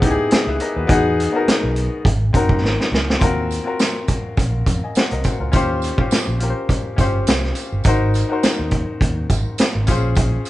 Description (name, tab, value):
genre	lush 1970s-style soul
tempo	104 BPM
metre	4/4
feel	swing 54% on 16ths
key	Eb dorian from 3.2 s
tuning	A4 = 440 Hz
part	clear baby grand piano	accompaniment	0.0-10.5 s	B3 to G#5	-22 LUFS	left 3 dB	none
part	fingered electric bass	bass	0.0-10.4 s	F#1 to F2	-21 LUFS	equal	none
part	vintage drum kit	drums	0.0-10.5 s	hi-hat, kick drum, snare drum	-18 LUFS	right 1 dB	none
part	tambourine	percussion	3.2-10.5 s	none	-34 LUFS	right 8 dB	none
room	light reverb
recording	band playing live in one room, nothing above 10.3 kHz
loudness	-16 LUFS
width	side -16 dB against mid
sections	0.0-3.2 A section; 3.2-10.5 B section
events	drum fill 2.6-3.2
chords	0.0 C#m9; 0.9 Emaj9; 2.1 G#9; 3.2 Ebm69; 5.5 Eb13; 7.9 Ab9; 9.9 Bbm7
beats	0.31 | 0.89 1.47 2.05 2.63 | 3.21 3.79 4.37 4.95 | 5.53 6.11 6.69 7.27 | 7.85 8.43 9.01 9.59 | 10.17